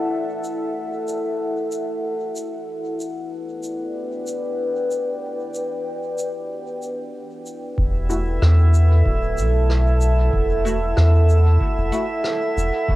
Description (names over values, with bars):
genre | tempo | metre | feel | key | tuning
ambient dub | 94 BPM | 4/4 | straight | unclear | A4 = 441 Hz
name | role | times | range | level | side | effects
deep dark ambient pad | sustained chords | 0.0-13.0 s | E4 to G5 | -24 LUFS | equal | chorus, built-in reverb, cassette tape
shaker and rim click | drums | 0.4-12.7 s | none | -32 LUFS | equal | cassette tape, dub echo
soft dub sub bass | bass | 7.8-13.0 s | D1 to E2 | -16 LUFS | equal | none
electronic kick drum | drums | 7.8-13.0 s | none | -24 LUFS | equal | cassette tape
drifting glass-harmonics texture | texture | 8.0-13.0 s | E4 to E5 | -27 LUFS | equal | chorus, built-in reverb, cassette tape
filtered dub chord stab | stabs | 8.1-12.1 s | A3 to F#4 | -28 LUFS | left 2 dB | phaser, lush chorus, cassette tape, dub echo
room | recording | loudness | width
small room ambience | home recording on cassette | -18 LUFS | side -17 dB against mid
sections
0.0-7.8 A section; 7.8-13.0 B section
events
none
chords
0.0 Esus24; 2.7 Em7; 7.8 D69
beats
| 0.12 0.76 1.40 2.04 | 2.67 3.31 3.95 4.59 | 5.23 5.87 6.50 7.14 | 7.78 8.42 9.06 9.69 | 10.33 10.97 11.61 12.25 | 12.89